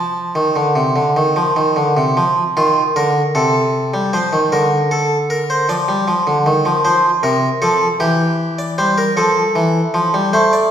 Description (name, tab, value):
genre	classical, baroque-style two-part invention for harpsichord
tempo	51 BPM (dotted quarters)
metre	6/8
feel	straight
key	Bb major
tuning	A4 = 440 Hz
part	harpsichord	solo	0.0-10.7 s	C3 to A5	-13 LUFS	equal	none
room	wet recital hall reverb, RT60 1.5 s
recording	heard from further back in the room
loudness	-13 LUFS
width	side -9 dB against mid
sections	0.0-2.2 A section; 2.2-10.7 B section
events	none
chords	0.0 F; 2.2 Bb; 3.3 Adim/C; 4.5 Bb/D; 5.7 Dmadd11; 6.8 F; 8.0 Edim; 9.2 F